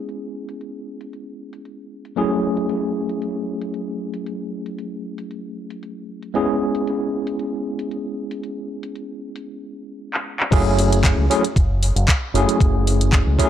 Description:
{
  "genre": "nu-disco, nu disco",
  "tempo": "115 BPM",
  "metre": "4/4",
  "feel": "straight",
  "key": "F# minor",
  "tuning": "A4 = 440 Hz",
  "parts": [
    { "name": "tine electric piano", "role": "accompaniment", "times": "0.0-13.5 s", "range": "F#3 to G#4", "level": "-23 LUFS", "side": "equal", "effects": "overdrive, fast stereo tremolo, sidechain pumping, analog delay" },
    { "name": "house drum kit", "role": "drums", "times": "0.1-13.5 s", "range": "crash cymbal, handclaps, hi-hat", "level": "-24 LUFS", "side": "left 1 dB", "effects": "overdrive, low-pass filter on hats, low-pass filter on snare, low-pass filter on cymbals" },
    { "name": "fingered electric bass with an envelope filter", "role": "bass", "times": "10.5-13.4 s", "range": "F#1 to C#2", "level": "-19 LUFS", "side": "equal", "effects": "sidechain pumping" },
    { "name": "electronic kick drum", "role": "drums", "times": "10.5-13.5 s", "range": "none", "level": "-18 LUFS", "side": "equal", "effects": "none" }
  ],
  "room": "digital ambience",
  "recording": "dry, gritty hardware recording, cassette tape",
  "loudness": "-19 LUFS",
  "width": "side -11 dB against mid",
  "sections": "0.0-10.5 A section; 10.5-13.5 B section",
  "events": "drum fill 10.1-10.5; drop 10.5-13.5",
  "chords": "0.0 C#m7; 2.2 F#m7; 6.3 C#m7; 10.5 F#m7",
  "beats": "| 0.09 0.61 1.13 1.65 | 2.17 2.70 3.22 3.74 | 4.26 4.78 5.30 5.83 | 6.35 6.87 7.39 7.91 | 8.44 8.96 9.48 10.00 | 10.52 11.04 11.57 12.09 | 12.61 13.13"
}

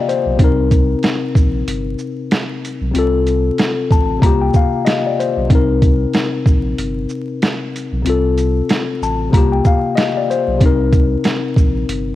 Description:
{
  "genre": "hip hop, boom-bap hip-hop",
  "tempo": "94 BPM",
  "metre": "4/4",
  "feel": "swing 58% on 16ths",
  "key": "C dorian",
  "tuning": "A4 = 441 Hz",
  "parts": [
    { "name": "tine electric piano", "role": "accompaniment", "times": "0.0-12.2 s", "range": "C3 to Bb5", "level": "-17 LUFS", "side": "left 4 dB", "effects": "medium stereo tremolo, high-pass filter, low-pass filter, cassette tape" },
    { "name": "boom bap sampler-style drum kit", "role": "drums", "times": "0.1-12.1 s", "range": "hi-hat, kick drum, shaker, snare drum", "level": "-15 LUFS", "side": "right 1 dB", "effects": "cassette tape" },
    { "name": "warm sub bass", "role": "bass", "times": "0.3-12.2 s", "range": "G1 to C2", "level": "-19 LUFS", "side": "equal", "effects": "tube saturation" }
  ],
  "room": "digital ambience",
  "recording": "home recording on cassette, vinyl crackle",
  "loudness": "-13 LUFS",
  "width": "side -14 dB against mid",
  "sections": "0.0-12.2 A section",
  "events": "none",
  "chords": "0.4 Cm7; 2.9 F; 4.2 Gm7/C; 5.5 Cm7; 8.1 F; 9.3 Gm7/C; 10.6 Cm7",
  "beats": "| 0.39 1.03 1.67 2.31 | 2.95 3.59 4.22 4.86 | 5.50 6.14 6.78 7.42 | 8.05 8.69 9.33 9.97 | 10.61 11.24 11.88"
}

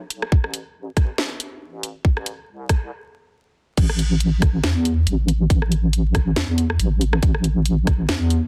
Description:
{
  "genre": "deep dubstep",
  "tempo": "139 BPM",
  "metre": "4/4",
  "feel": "swing 56% on 16ths, half-time",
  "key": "A minor",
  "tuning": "A4 = 440 Hz",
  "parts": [
    { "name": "deep soft wobble bass", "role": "bass", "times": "0.0-8.5 s", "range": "A1 to E2", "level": "-22 LUFS", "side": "equal", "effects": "chorus, high-pass filter" },
    { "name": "garage drum kit", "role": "drums", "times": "0.1-8.4 s", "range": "crash cymbal, hi-hat, rim click, snare drum", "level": "-28 LUFS", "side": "equal", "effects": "soft clipping on snare, high-pass filter on snare, high-pass filter on hats, high-pass filter on cymbals" },
    { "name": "electronic kick drum", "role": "drums", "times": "0.3-8.0 s", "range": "none", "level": "-19 LUFS", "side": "equal", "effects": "none" }
  ],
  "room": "little or no reverb",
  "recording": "dense, heavily limited modern master, vinyl crackle",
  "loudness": "-20 LUFS",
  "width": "mono",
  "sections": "0.0-3.8 A section; 3.8-8.5 B section",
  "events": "build-up 0.0-3.8; stop 2.9-3.8; drop 3.8-8.5",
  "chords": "none",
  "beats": "| 0.32 0.75 1.19 1.62 | 2.05 2.48 2.91 3.34 | 3.77 4.21 4.64 5.07 | 5.50 5.93 6.36 6.80 | 7.23 7.66 8.09"
}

